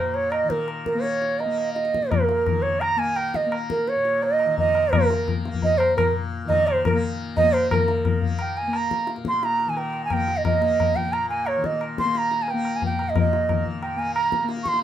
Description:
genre	indian classical, Hindustani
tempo	174 BPM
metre	4/4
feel	straight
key	Bb raga bageshri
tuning	A4 = 440 Hz
part	bright reedy bansuri	melody	0.0-14.8 s	Bb4 to Db6	-22 LUFS	right 3 dB	none
part	tanpura	drone	0.0-14.8 s	Bb2 to Bb3	-30 LUFS	left 3 dB	none
part	tabla	percussion	0.1-14.8 s	none	-26 LUFS	left 5 dB	none
room	light reverb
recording	minimal, uncompressed stereo recording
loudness	-20 LUFS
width	side -10 dB against mid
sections	0.0-7.7 A section; 7.7-14.8 B section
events	speeding up 0.0-14.8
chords	none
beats	0.32 | 0.68 1.03 1.39 1.75 | 2.10 2.46 2.81 3.16 | 3.52 3.87 4.22 4.57 | 4.92 5.27 5.62 5.97 | 6.32 6.66 7.01 7.36 | 7.70 8.05 8.39 8.74 | 9.08 9.42 9.77 10.11 | 10.45 10.79 11.13 11.47 | 11.81 12.15 12.48 12.82 | 13.16 13.49 13.83 14.16 | 14.50 14.83

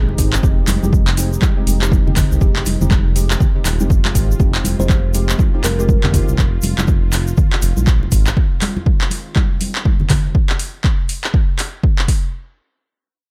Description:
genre	afro house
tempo	121 BPM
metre	4/4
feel	swing 60% on 16ths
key	F minor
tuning	A4 = 442 Hz
part	warm analog pad	sustained chords	0.0-10.3 s	Eb3 to F4	-34 LUFS	equal	chorus, sidechain pumping
part	deep mellow chord stab	stabs	0.0-6.4 s	Ab3 to G4	-29 LUFS	equal	chorus, sidechain pumping, tape echo
part	smooth synth bass	bass	0.0-8.3 s	Eb1 to C2	-20 LUFS	equal	sidechain pumping
part	congas	percussion	0.1-10.2 s	none	-25 LUFS	equal	none
part	afro-pop drum kit	drums	0.2-12.2 s	handclaps, hi-hat	-25 LUFS	equal	overdrive
part	electronic kick drum	drums	0.2-12.2 s	none	-18 LUFS	equal	overdrive
part	egg shaker	percussion	0.2-8.3 s	none	-32 LUFS	equal	none
part	kalimba	melody	4.8-5.9 s	Bb4 to C5	-31 LUFS	equal	delay
room	digital ambience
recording	none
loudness	-16 LUFS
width	mono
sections	0.0-12.3 A section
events	drop 0.0-12.3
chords	0.0 Fm7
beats	| 0.43 0.93 1.43 1.92 | 2.42 2.91 3.41 3.90 | 4.40 4.90 5.39 5.89 | 6.38 6.88 7.38 7.87 | 8.37 8.86 9.36 9.86 | 10.35 10.85 11.34 11.84

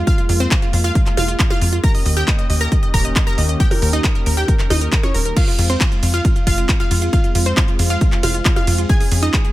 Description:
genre	uplifting trance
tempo	136 BPM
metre	4/4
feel	straight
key	F minor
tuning	A4 = 435 Hz
part	wide unison pluck	melody	0.0-9.5 s	C4 to Bb5	-23 LUFS	right 1 dB	sidechain pumping, tape echo
part	warm concert grand piano	second line	0.0-9.5 s	F5 to Bb6	-29 LUFS	left 4 dB	sidechain pumping
part	filtered supersaw swell	sustained chords	0.0-9.5 s	Eb3 to G4	-27 LUFS	equal	sidechain pumping
part	tight sequencer bass	bass	0.0-9.3 s	Eb1 to F2	-18 LUFS	equal	tube saturation, sidechain pumping
part	electronic kick drum	drums	0.1-9.4 s	none	-16 LUFS	equal	none
part	techno drum kit	drums	0.1-9.5 s	crash cymbal, handclaps, hi-hat, percussion blips, ride cymbal	-22 LUFS	right 1 dB	none
room	digital ambience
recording	none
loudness	-14 LUFS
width	side -16 dB against mid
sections	0.0-9.5 A section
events	none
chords	0.0 Fm; 1.8 Eb7; 5.4 Fm; 8.9 Db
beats	| 0.07 0.51 0.95 1.39 | 1.84 2.28 2.72 3.16 | 3.60 4.04 4.48 4.92 | 5.37 5.81 6.25 6.69 | 7.13 7.57 8.01 8.45 | 8.89 9.34

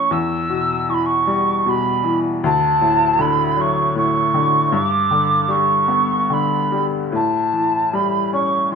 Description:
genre	celtic folk, Celtic slow air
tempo	78 BPM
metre	3/4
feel	rubato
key	A mixolydian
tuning	A4 = 442 Hz
part	mellow hollow wooden whistle	melody	0.0-8.8 s	A5 to E6	-17 LUFS	right 3 dB	none
part	bright upright piano	accompaniment	0.0-8.8 s	D2 to E4	-20 LUFS	left 3 dB	none
room	moderate recital hall reverb, RT60 1.3 s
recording	minimal, uncompressed stereo recording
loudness	-15 LUFS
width	side -6 dB against mid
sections	0.0-8.8 A section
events	none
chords	0.1 Em; 2.4 D; 4.7 G; 7.1 A7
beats	| 0.11 0.89 1.66 | 2.43 3.19 3.95 | 4.72 5.49 6.29 | 7.12 7.93 8.71

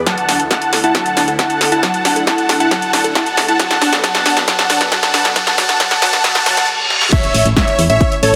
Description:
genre	uplifting trance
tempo	136 BPM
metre	4/4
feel	straight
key	unclear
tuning	A4 = 440 Hz
part	lush unison pad	sustained chords	0.0-8.4 s	D2 to F#5	-27 LUFS	equal	chorus, phaser, sidechain pumping
part	unison pluck	arpeggios	0.0-6.5 s	F#3 to A4	-25 LUFS	equal	sidechain pumping, digital delay
part	riser, reverse cymbal and impact	sound effects	0.2-8.4 s	none	-25 LUFS	equal	none
part	dense compressed supersaw	melody	0.1-8.4 s	A4 to A5	-18 LUFS	equal	sidechain pumping, low-pass filter, delay
part	electronic kick drum	drums	0.1-8.1 s	none	-19 LUFS	equal	high-pass filter on kick
part	punchy analog drum machine	drums	0.1-8.4 s	crash cymbal, hi-hat, snare drum	-18 LUFS	equal	high-pass filter on snare, high-pass filter on hats, high-pass filter on cymbals, high-pass filter on room
part	plucky unison lead	second line	7.1-8.4 s	C#5 to E5	-21 LUFS	equal	sidechain pumping
part	solid FM bass	bass	7.3-8.4 s	A1 to E2	-18 LUFS	equal	sidechain pumping
room	moderate lush hall reverb, RT60 1.9 s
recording	high-pass filter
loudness	-14 LUFS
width	mono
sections	0.0-7.1 A section; 7.1-8.4 B section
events	build-up 0.0-7.1; drum fill 0.0-6.7, 6.9; filter sweep on supersaw synth 0.0-7.1; filter sweep 0.0-7.1; reverse cymbal 6.2-7.1; drop 7.1-8.4; impact 7.1-8.4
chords	0.1 Dadd9; 3.6 Bm; 7.1 A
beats	| 0.07 0.51 0.95 1.39 | 1.83 2.27 2.71 3.15 | 3.60 4.04 4.48 4.92 | 5.36 5.80 6.24 6.68 | 7.12 7.57 8.01

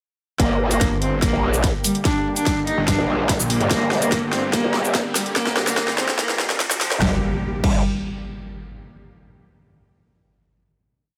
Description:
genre	heavy wobble dubstep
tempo	145 BPM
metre	4/4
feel	half-time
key	G minor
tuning	A4 = 443 Hz
part	rich cello	melody	0.4-7.8 s	F3 to Eb4	-27 LUFS	equal	tape echo
part	supersaw pad	sustained chords	0.7-7.2 s	D3 to G4	-33 LUFS	equal	vintage 12-bit sampler grit, sidechain pumping, low-pass filter
part	growl bass	bass	0.4-7.8 s	G1 to G2	-24 LUFS	equal	chorus, overdrive
part	dubstep drum kit	drums	0.4-7.7 s	crash cymbal, hi-hat, shaker, snare drum	-26 LUFS	equal	high-pass filter on snare, small room reverb, high-pass filter on hats, high-pass filter on perc, high-pass filter on cymbals
part	electronic kick drum	drums	0.4-7.7 s	none	-26 LUFS	equal	small room reverb
part	riser and impact	sound effects	4.2-8.7 s	none	-34 LUFS	equal	none
part	snarling distorted saw bass	bass	0.8-6.7 s	G1 to D2	-29 LUFS	equal	distortion, overdrive
room	light reverb, digital ambience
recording	high-pass filter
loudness	-20 LUFS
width	mono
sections	0.4-7.0 build; 7.0-8.7 final chord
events	build-up 0.4-7.0; drum fill 0.4-7.0; filter sweep on supersaw synth 0.4-7.0; filter sweep 0.4-7.0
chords	0.4 Gm; 7.0 N.C.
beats	| 0.40 0.81 1.22 1.64 | 2.05 2.46 2.88 3.29 | 3.71 4.12 4.53 4.95 | 5.36 5.78 6.19 6.60 | 7.02 7.43 7.84 8.26

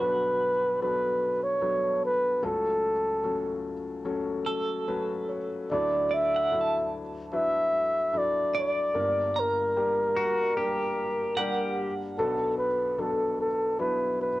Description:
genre	acoustic folk-pop ballad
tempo	74 BPM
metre	4/4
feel	straight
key	unclear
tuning	A4 = 441 Hz
part	breathy flugelhorn	melody	0.0-14.4 s	A4 to E5	-25 LUFS	equal	none
part	felt-muted upright piano	accompaniment	0.0-14.4 s	G1 to A5	-32 LUFS	left 3 dB	cassette tape
part	clean electric guitar	arpeggios	0.0-12.5 s	F#4 to Bb5	-35 LUFS	right 5 dB	tremolo, cassette tape
part	pedal steel guitar	second line	10.2-11.9 s	F#4 to G4	-32 LUFS	left 3 dB	cassette tape
room	moderate small room reverb, RT60 0.5 s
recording	home recording on cassette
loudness	-25 LUFS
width	side -17 dB against mid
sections	0.0-14.4 A section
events	none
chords	0.0 Bm7; 2.4 F#m/C#; 5.7 Dadd9; 9.0 Gm; 12.2 Bm7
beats	0.80 1.61 | 2.42 3.23 4.05 4.87 | 5.69 6.51 7.33 8.14 | 8.95 9.76 10.57 11.37 | 12.17 12.98 13.78

